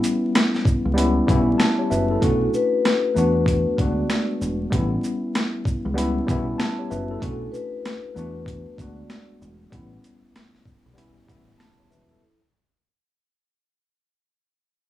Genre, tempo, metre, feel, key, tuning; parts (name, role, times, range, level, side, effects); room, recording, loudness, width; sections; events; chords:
hip hop, boom-bap hip-hop; 96 BPM; 4/4; swing 61% on 16ths; A4 = 440 Hz
mellow tine electric piano; accompaniment; 0.0-12.4 s; G3 to A5; -24 LUFS; left 1 dB; medium stereo tremolo, cassette tape, high-pass filter, low-pass filter
boom bap sampler-style drum kit; drums; 0.0-12.1 s; hi-hat, kick drum, rim click, shaker, snare drum; -23 LUFS; equal
deep dub fingered electric bass; bass; 0.9-12.2 s; E1 to E2; -25 LUFS; equal
vibraphone with soft mallets; melody; 2.2-9.3 s; A4 to D5; -25 LUFS; left 4 dB; high-pass filter, low-pass filter, tape echo
light reverb; vinyl crackle, small room ambience; -19 LUFS; side -14 dB against mid
0.0-12.2 A section
fade-out 0.0-12.2
0.0 A7; 2.2 Bm7; 3.2 E7sus4; 4.7 A7; 7.2 Bm7; 8.2 E7sus4; 9.7 A7